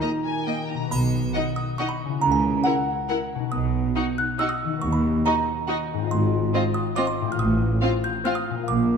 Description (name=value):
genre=cinematic, playful, whimsical film cue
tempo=139 BPM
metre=3/4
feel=straight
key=B major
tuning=A4 = 443 Hz
part: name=rich chamber violin section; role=melody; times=0.0-8.3 s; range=D#5 to Bb5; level=-34 LUFS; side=left 4 dB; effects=none
part: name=mellow clarinet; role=second line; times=0.0-0.7 s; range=Eb4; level=-29 LUFS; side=right 1 dB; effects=none
part: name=rich chamber violin section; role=second line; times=0.0-8.3 s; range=F4 to Eb5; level=-32 LUFS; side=left 3 dB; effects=none
part: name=rich chamber viola section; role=accompaniment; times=0.0-8.3 s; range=Bb3 to E4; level=-31 LUFS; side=right 1 dB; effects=none
part: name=concert harp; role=arpeggios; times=0.0-9.0 s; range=Ab2 to F5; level=-29 LUFS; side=left 8 dB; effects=none
part: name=music box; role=melody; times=0.9-9.0 s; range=F#5 to G6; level=-27 LUFS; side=right 3 dB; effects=none
part: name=rich symphonic cello section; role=bass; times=0.9-9.0 s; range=D#2 to C#3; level=-27 LUFS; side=right 2 dB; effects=none
part: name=warm chamber double bass section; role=bass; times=0.9-9.0 s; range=Ab1 to D#2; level=-27 LUFS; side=right 3 dB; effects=none
part: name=triangle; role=percussion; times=0.9-1.8 s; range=none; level=-39 LUFS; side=right 1 dB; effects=none
room=moderate scoring stage reverb, RT60 1.6 s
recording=dark, warm production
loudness=-21 LUFS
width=side -6 dB against mid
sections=0.9-9.0 A section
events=none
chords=0.0 Eb; 0.9 B; 2.2 F#7/C#; 3.5 B; 4.8 B/D#; 6.1 Fm7/Ab; 7.4 F7/A